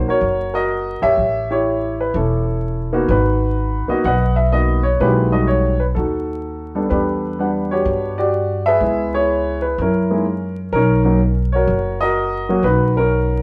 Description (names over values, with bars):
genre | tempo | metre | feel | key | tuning
jazz piano trio | 126 BPM | 4/4 | swing 67% on 8ths | B major | A4 = 441 Hz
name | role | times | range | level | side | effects
warm upright piano | melody | 0.0-13.4 s | F#3 to F#5 | -20 LUFS | equal | none
upright bass | bass | 0.0-13.4 s | E1 to G2 | -23 LUFS | equal | none
room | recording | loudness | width
moderate stone room reverb, RT60 1.0 s | band playing live in one room, vinyl crackle | -18 LUFS | mono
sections
0.0-13.4 A section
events
none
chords
0.0 Bmaj9 (rootless); 1.2 A7; 3.1 G#m7; 5.0 B7b13; 6.9 Em9; 8.8 C#m9; 9.8 F#7; 10.7 Bmaj9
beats
0.23 0.70 | 1.18 1.66 2.13 2.61 | 3.09 3.57 4.04 4.52 | 5.00 5.47 5.95 6.43 | 6.91 7.38 7.86 8.34 | 8.82 9.29 9.77 10.25 | 10.73 11.21 11.69 12.16 | 12.64 13.12